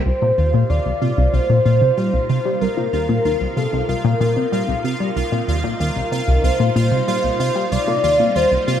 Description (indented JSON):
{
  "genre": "ambient, sequencer-driven space music",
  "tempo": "94 BPM",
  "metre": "4/4",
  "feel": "straight",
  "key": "C minor",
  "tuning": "A4 = 437 Hz",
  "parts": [
    { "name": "phased string machine", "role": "sustained chords", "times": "0.0-8.8 s", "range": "C3 to Eb4", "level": "-30 LUFS", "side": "equal", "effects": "ensemble chorus, phaser" },
    { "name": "mellow horn-like synth lead", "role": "melody", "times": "0.1-8.8 s", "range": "A4 to D5", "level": "-20 LUFS", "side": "equal", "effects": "analog chorus, vintage 12-bit sampler grit, analog delay" },
    { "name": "tight sequenced synth", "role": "riff", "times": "0.1-8.8 s", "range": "C2 to G3", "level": "-18 LUFS", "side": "left 1 dB", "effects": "chorus, phaser, vintage 12-bit sampler grit, analog delay" },
    { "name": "pulsing gated texture", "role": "texture", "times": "0.4-8.8 s", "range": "F4 to F5", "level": "-26 LUFS", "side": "equal", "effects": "chorus, built-in reverb" }
  ],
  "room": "moderate plate reverb, RT60 2.3 s",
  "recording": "none",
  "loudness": "-16 LUFS",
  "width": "side -9 dB against mid",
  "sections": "0.1-8.8 A section",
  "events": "none",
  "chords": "0.1 Cm7"
}